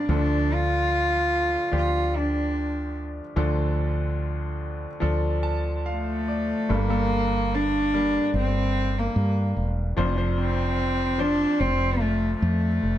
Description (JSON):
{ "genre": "acoustic folk-pop ballad", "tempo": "73 BPM", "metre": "4/4", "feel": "straight", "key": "G minor", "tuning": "A4 = 441 Hz", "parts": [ { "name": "warm cello", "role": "melody", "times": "0.0-13.0 s", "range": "A3 to F4", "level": "-24 LUFS", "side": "equal", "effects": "none" }, { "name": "bright grand piano", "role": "accompaniment", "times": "0.0-13.0 s", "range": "F1 to A5", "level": "-29 LUFS", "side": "left 1 dB", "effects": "none" }, { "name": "woody fretless electric bass", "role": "bass", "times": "0.1-13.0 s", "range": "E1 to G2", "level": "-26 LUFS", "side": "equal", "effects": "none" } ], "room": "light reverb", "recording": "close, detailed microphones", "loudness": "-22 LUFS", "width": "side -12 dB against mid", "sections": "0.0-6.7 A section; 6.7-13.0 B section", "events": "none", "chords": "0.1 Dm; 6.7 Gmadd9; 10.0 Dm7/F", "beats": "| 0.08 0.90 1.72 2.54 | 3.36 4.19 5.02 5.86 | 6.69 7.52 8.34 9.16 | 9.97 10.79 11.61 12.42" }